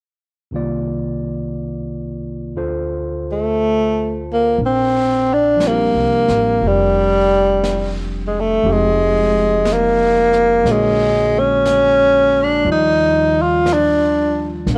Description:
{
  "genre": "jazz ballad",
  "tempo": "59 BPM",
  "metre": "4/4",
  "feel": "swing 68% on 8ths",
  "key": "Bb major",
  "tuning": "A4 = 440 Hz",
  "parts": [
    { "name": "barky tine electric piano", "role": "accompaniment", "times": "0.5-14.8 s", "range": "C2 to D5", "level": "-26 LUFS", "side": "equal", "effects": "cassette tape" },
    { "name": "breathy tenor saxophone", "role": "melody", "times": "3.3-14.8 s", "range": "G3 to F4", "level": "-16 LUFS", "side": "equal", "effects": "cassette tape" },
    { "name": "upright bass", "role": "bass", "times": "4.6-14.8 s", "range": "F1 to Eb2", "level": "-26 LUFS", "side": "equal", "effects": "none" },
    { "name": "jazz brush drum kit", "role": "drums", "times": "4.6-14.8 s", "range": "brushed snare drum, hi-hat, snare drum", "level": "-33 LUFS", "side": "equal", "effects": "cassette tape" }
  ],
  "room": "light reverb, small room ambience",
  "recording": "home recording on cassette",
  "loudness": "-16 LUFS",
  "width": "mono",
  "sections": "0.5-4.6 A section; 4.6-14.8 B section",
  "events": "none",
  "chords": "0.5 Cm11; 2.6 Dm7; 4.6 Bb69; 8.6 Fm9; 10.7 Bb7alt; 12.7 Ebmaj9",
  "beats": "| 0.53 1.55 2.56 3.57 | 4.58 5.60 6.62 7.63 | 8.64 9.65 10.65 11.65 | 12.66 13.67 14.68"
}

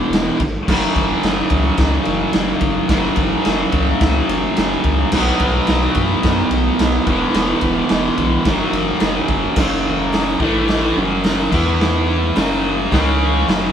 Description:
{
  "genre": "garage rock duo or trio",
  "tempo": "108 BPM",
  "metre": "4/4",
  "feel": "straight",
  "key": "F# minor",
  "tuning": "A4 = 441 Hz",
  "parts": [
    { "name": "fuzz guitar", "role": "riff", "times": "0.0-13.7 s", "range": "E2 to E4", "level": "-17 LUFS", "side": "equal", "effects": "distortion" },
    { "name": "pure sine sub bass", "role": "bass", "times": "0.0-13.7 s", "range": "E1 to F#2", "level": "-23 LUFS", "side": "equal", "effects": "none" },
    { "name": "raw garage drum kit", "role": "drums", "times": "0.1-13.6 s", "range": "crash cymbal, hi-hat, kick drum, ride cymbal, snare drum", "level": "-19 LUFS", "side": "equal", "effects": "none" }
  ],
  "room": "light reverb",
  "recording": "band playing live in one room",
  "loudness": "-14 LUFS",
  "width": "side -8 dB against mid",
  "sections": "0.0-9.6 A section; 9.6-13.7 B section",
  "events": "none",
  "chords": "0.0 E; 0.7 F#5; 5.1 B5; 7.1 E5; 8.5 F#5; 10.4 A5; 11.0 F#5; 11.5 E5; 12.4 F#5; 12.9 C#5",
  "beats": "0.13 | 0.69 1.24 1.80 2.35 | 2.91 3.46 4.02 4.58 | 5.13 5.69 6.24 6.80 | 7.36 7.91 8.47 9.03 | 9.58 10.14 10.70 11.25 | 11.81 12.37 12.93 13.48"
}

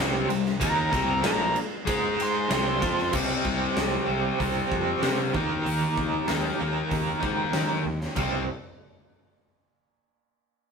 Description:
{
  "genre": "hard rock",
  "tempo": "95 BPM",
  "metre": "4/4",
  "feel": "straight",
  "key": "C minor",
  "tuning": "A4 = 441 Hz",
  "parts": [
    { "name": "cranked stack guitar", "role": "riff", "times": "0.0-8.4 s", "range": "Bb2 to Ab4", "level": "-29 LUFS", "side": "right 6 dB", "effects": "overdrive, tremolo" },
    { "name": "distorted electric guitar", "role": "riff", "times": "0.0-8.4 s", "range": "Bb2 to Ab4", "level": "-29 LUFS", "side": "left 5 dB", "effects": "distortion" },
    { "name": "fuzz picked electric bass", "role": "bass", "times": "0.0-8.5 s", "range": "Bb1 to Eb3", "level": "-31 LUFS", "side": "equal", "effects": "overdrive" },
    { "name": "big rock drum kit", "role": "drums", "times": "0.3-8.3 s", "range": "crash cymbal, hi-hat, kick drum, ride cymbal, snare drum", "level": "-30 LUFS", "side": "equal", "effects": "none" },
    { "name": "biting lead guitar", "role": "melody", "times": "0.6-3.1 s", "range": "Bb5 to C6", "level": "-28 LUFS", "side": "right 1 dB", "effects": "overdrive" }
  ],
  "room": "moderate studio reverb, RT60 0.7 s",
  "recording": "rough rehearsal-room recording",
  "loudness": "-23 LUFS",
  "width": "side -5 dB against mid",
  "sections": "0.0-3.1 A section; 3.1-8.2 B section; 8.2-10.7 C section",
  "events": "lead electric guitar solo 0.0-3.1",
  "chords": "0.0 Cm; 1.9 Ab5; 2.5 C5; 5.3 Eb5; 8.2 C5",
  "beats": "| 0.61 1.24 1.87 2.50 | 3.13 3.77 4.40 5.03 | 5.66 6.29 6.92 7.55 | 8.18"
}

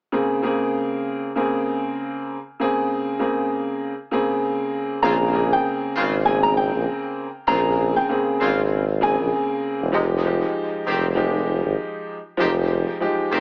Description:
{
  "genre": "hip hop",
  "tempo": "98 BPM",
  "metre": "4/4",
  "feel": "swing 55% on 16ths",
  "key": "Bb dorian",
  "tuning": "A4 = 440 Hz",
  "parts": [
    { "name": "warm upright piano", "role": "accompaniment", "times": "0.1-13.4 s", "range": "Db3 to Ab4", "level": "-25 LUFS", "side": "equal", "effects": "cassette tape, high-pass filter, low-pass filter, plate reverb" },
    { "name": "flamenco guitar", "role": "melody", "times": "5.0-9.5 s", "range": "G5 to Bb5", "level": "-25 LUFS", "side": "equal", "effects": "high-pass filter, low-pass filter, plate reverb, tape echo" },
    { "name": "warm horn section", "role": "stabs", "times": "5.0-13.4 s", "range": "C3 to G4", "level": "-29 LUFS", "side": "equal", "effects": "high-pass filter, low-pass filter, plate reverb, tape echo" },
    { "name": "warm tuba", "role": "bass", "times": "5.1-13.4 s", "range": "E1 to Bb1", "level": "-25 LUFS", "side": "equal", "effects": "none" }
  ],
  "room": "moderate studio reverb, RT60 0.6 s",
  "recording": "small speaker sound",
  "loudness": "-22 LUFS",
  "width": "mono",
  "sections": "0.1-5.0 A section; 5.0-13.4 B section",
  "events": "none",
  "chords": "0.1 Bbm9; 9.9 Fm9",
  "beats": "| 0.14 0.76 1.37 1.98 | 2.59 3.21 3.82 4.43 | 5.04 5.66 6.27 6.88 | 7.49 8.10 8.72 9.33 | 9.94 10.55 11.16 11.78 | 12.39 13.00"
}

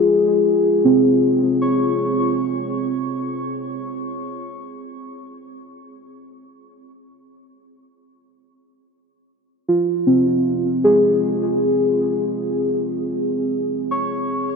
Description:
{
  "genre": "ambient",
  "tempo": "free time",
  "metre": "none",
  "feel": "none",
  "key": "unclear",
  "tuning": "A4 = 439 Hz",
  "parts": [
    { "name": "muted felt-like synth keys", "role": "solo", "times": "0.0-4.5, 9.7-14.6 s", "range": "C4 to Db6", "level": "-17 LUFS", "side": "equal", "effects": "chorus, ping-pong delay" }
  ],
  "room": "wet huge ambient reverb, RT60 8.0 s",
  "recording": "none",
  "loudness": "-17 LUFS",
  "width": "side -4 dB against mid",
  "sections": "0.0-8.9 A section; 8.9-14.6 B section",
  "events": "none",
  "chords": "0.0 Dbmaj7; 2.8 N.C.; 8.9 Dbmaj7/C",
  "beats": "free time"
}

